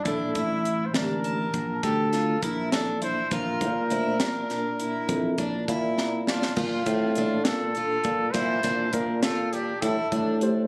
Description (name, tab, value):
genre	progressive instrumental, band music in an uneven meter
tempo	203 BPM (eighths)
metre	11/8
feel	straight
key	Bb lydian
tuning	A4 = 440 Hz
part	warm trumpet	melody	0.0-10.4 s	E4 to C5	-32 LUFS	equal	plate reverb
part	tine electric piano	accompaniment	0.1-10.7 s	Bb2 to Bb5	-33 LUFS	equal	medium tremolo, plate reverb
part	picked twelve-string acoustic guitar	arpeggios	0.1-10.6 s	C4 to A5	-35 LUFS	equal	plate reverb
part	sustaining fretless electric bass	bass	0.1-10.7 s	A1 to Bb2	-30 LUFS	equal	none
part	tight funk drum kit	drums	0.1-10.6 s	crash cymbal, hi-hat, kick drum, snare drum	-32 LUFS	equal	none
room	light reverb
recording	recorded on a phone in the room, club reverb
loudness	-26 LUFS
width	mono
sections	0.0-6.6 A section; 6.6-10.7 B section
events	tine electric piano fill 5.7-6.6; drum fill 6.0-6.6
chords	0.1 Bbmaj7; 3.3 Bb; 6.6 Bbmaj7; 9.8 Am7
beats	| 0.06 0.36 0.65 0.95 1.25 1.54 1.84 2.13 2.43 2.73 3.02 | 3.32 3.62 3.91 4.21 4.50 4.80 5.09 5.39 5.69 5.98 6.28 | 6.58 6.87 7.17 7.46 7.76 8.05 8.35 8.65 8.94 9.24 9.53 | 9.83 10.12 10.42